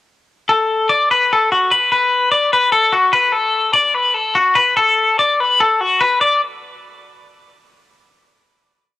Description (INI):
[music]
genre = rock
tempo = 293 BPM (eighths)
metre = 7/8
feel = straight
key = D major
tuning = A4 = 440 Hz
[part]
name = twangy electric guitar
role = solo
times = 0.5-6.4 s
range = F#4 to D5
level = -12 LUFS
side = left 2 dB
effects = lush chorus, cassette tape
[sound]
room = light reverb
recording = home recording on cassette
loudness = -12 LUFS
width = side -15 dB against mid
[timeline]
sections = 0.5-6.2 A section; 6.2-7.7 final note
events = none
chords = none